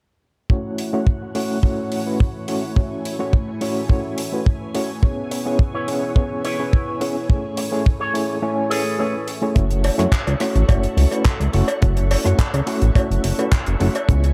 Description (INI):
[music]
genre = nu-disco, nu disco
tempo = 106 BPM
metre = 4/4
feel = straight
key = F# minor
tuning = A4 = 440 Hz
[part]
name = overdriven reed electric piano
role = accompaniment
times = 0.5-14.3 s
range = A3 to G#5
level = -26 LUFS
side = equal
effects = fast tremolo, low-pass filter, analog delay
[part]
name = string machine, full ensemble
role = sustained chords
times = 0.5-14.3 s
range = A3 to C#6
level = -32 LUFS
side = equal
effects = ensemble chorus, sidechain pumping
[part]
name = kick drum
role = drums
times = 0.5-14.2 s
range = none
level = -19 LUFS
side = equal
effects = none
[part]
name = tight funk drum kit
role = drums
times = 0.8-14.3 s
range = handclaps, hi-hat, rim click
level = -33 LUFS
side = equal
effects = analog delay
[part]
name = electric guitar with an envelope filter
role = riff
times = 5.3-9.3 s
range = E4 to C#5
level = -30 LUFS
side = equal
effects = lush chorus, analog delay
[part]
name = chorused synth bass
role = bass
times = 9.6-14.3 s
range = F#1 to F#2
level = -20 LUFS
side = equal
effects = tube saturation
[part]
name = cowbell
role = percussion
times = 9.8-14.1 s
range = none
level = -30 LUFS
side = equal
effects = analog delay
[sound]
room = moderate spring reverb, RT60 2.6 s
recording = echo-heavy mix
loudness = -20 LUFS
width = mono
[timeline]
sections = 0.5-9.6 A section; 9.6-14.3 B section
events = kick drops out 8.4-9.6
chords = 0.5 F#m7; 5.0 C#m7; 7.3 Amaj7; 9.6 F#m7